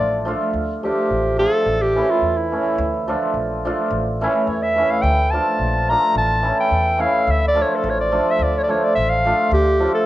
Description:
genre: balkan folk, Balkan wedding band.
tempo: 107 BPM.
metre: 2/4.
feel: swing 53% on 16ths.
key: D harmonic minor.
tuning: A4 = 440 Hz.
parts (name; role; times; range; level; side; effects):
clear clarinet; melody; 0.0-10.1 s; E4 to Bb5; -19 LUFS; equal; cassette tape.
cimbalom; accompaniment; 0.0-10.1 s; E3 to F4; -20 LUFS; right 1 dB; cassette tape.
upright bass; bass; 0.0-9.9 s; A1 to E2; -24 LUFS; equal; none.
room: moderate spring reverb, RT60 1.5 s, studio reverb.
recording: home recording on cassette.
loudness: -16 LUFS.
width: side -14 dB against mid.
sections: 0.5-9.5 A section.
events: clarinet solo 0.5-9.5.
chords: 0.0 Dm; 1.7 A; 2.8 Dm; 3.9 A; 5.0 Dm; 6.2 A; 7.3 Dm.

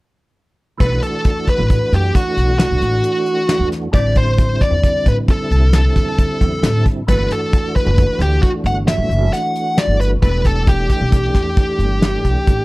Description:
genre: progressive instrumental, band music in an uneven meter.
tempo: 134 BPM.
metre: 7/4.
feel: straight.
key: unclear.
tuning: A4 = 438 Hz.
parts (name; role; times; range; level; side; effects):
high-gain lead guitar; melody; 0.8-12.6 s; F#4 to F#5; -19 LUFS; equal; distortion, plate reverb.
percussive tonewheel organ; accompaniment; 0.8-12.6 s; D3 to G4; -24 LUFS; right 1 dB; chorus vibrato, fast rotary speaker.
upright bass; bass; 0.8-12.6 s; E1 to A2; -17 LUFS; equal; none.
soft brush drum kit; drums; 0.8-12.6 s; hi-hat, kick drum, snare drum; -16 LUFS; equal; none.
room: light reverb.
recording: dark, warm production.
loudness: -13 LUFS.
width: side -21 dB against mid.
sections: 0.8-12.6 A section.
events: none.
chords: 0.8 Bsus4; 3.9 Am; 7.1 Gmaj7; 10.2 Em7.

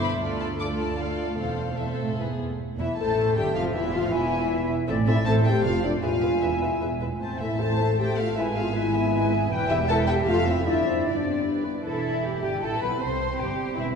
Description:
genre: quick classical-period movement for symphony orchestra.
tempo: 156 BPM.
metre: 3/4.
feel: straight.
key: A minor.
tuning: A4 = 440 Hz.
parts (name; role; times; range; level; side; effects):
warm studio violin section; melody; 0.0-14.0 s; E4 to D6; -35 LUFS; left 4 dB; none.
rich studio violin section; second line; 0.0-13.9 s; E4 to A5; -33 LUFS; left 2 dB; none.
dark studio viola section; accompaniment; 0.0-14.0 s; E3 to C5; -32 LUFS; right 1 dB; none.
dark studio cello section; bass; 0.0-14.0 s; D2 to A4; -30 LUFS; right 3 dB; none.
rich studio double bass section; bass; 0.0-13.8 s; E1 to D2; -30 LUFS; right 3 dB; none.
warm French horn section; sustained chords; 2.8-14.0 s; E3 to A4; -26 LUFS; left 2 dB; none.
bright small flute group; second line; 3.0-14.0 s; C5 to C6; -32 LUFS; left 2 dB; none.
room: wet church reverb, RT60 2.9 s.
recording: recorded in a church or concert hall, nothing above 10.4 kHz.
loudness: -22 LUFS.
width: side -6 dB against mid.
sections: 0.0-2.6 A section; 2.6-11.9 B section; 11.9-14.0 C section.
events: none.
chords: 0.2 Dm; 1.4 Am/E; 2.2 E; 2.6 Am; 3.8 E; 4.9 Am; 5.6 Dm/F; 6.0 E; 7.2 Am; 8.4 E/G#; 9.5 Em; 10.3 F; 10.7 Gsus4; 11.5 G; 11.9 Emadd11; 13.0 C.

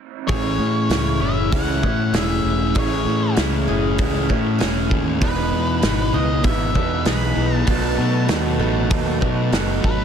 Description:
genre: rock, shoegaze and dream pop.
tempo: 97 BPM.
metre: 4/4.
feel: straight.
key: A lydian.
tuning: A4 = 440 Hz.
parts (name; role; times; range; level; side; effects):
octave-fuzz lead guitar; melody; 0.3-10.0 s; B4 to B5; -27 LUFS; left 2 dB; distortion, tape echo.
picked twelve-string acoustic guitar; arpeggios; 0.3-10.0 s; D#4 to A5; -30 LUFS; left 11 dB; lush chorus, tape echo.
electric guitar through a small old amp; riff; 0.3-10.0 s; A2 to E4; -24 LUFS; right 14 dB; reverse reverb.
thick fuzz guitar; riff; 0.3-10.0 s; E2 to B3; -24 LUFS; left 10 dB; distortion, wide subtle chorus.
growling fingered electric bass; bass; 0.3-10.0 s; E1 to B2; -23 LUFS; equal; overdrive.
loose indie drum kit; drums; 0.3-10.0 s; hi-hat, kick drum, snare drum; -23 LUFS; equal; none.
warm analog pad; sustained chords; 5.2-10.0 s; F#4 to A5; -32 LUFS; right 2 dB; chorus.
room: small room reverb.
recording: dense, heavily limited modern master.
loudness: -17 LUFS.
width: side -8 dB against mid.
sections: 0.3-10.0 A section.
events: none.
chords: 0.3 Amaj7; 5.2 Emaj7; 7.7 B7.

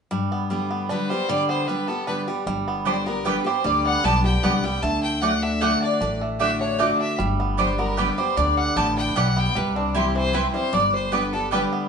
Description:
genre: bluegrass.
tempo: 152 BPM.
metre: 3/4.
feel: straight.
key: G major.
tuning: A4 = 440 Hz.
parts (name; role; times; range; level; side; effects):
bluegrass banjo; melody; 0.1-11.9 s; D3 to G4; -27 LUFS; right 5 dB; none.
picked steel-string acoustic guitar; accompaniment; 0.1-11.9 s; G2 to G4; -26 LUFS; left 2 dB; none.
clear fiddle; melody; 0.9-11.6 s; D4 to A5; -27 LUFS; left 2 dB; slapback echo.
upright bass; bass; 2.5-11.6 s; G1 to D2; -27 LUFS; equal; none.
lap resonator guitar; second line; 2.9-11.7 s; D4 to A5; -28 LUFS; left 1 dB; none.
mandolin; stabs; 2.9-11.6 s; A3 to G5; -26 LUFS; right 5 dB; none.
room: wet studio reverb, RT60 0.8 s.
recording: band playing live in one room, nothing above 11.0 kHz.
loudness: -20 LUFS.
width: side -6 dB against mid.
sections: 0.1-2.5 A section; 2.5-11.9 B section.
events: none.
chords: 0.1 G; 4.8 D; 7.2 G; 9.6 C; 10.7 G.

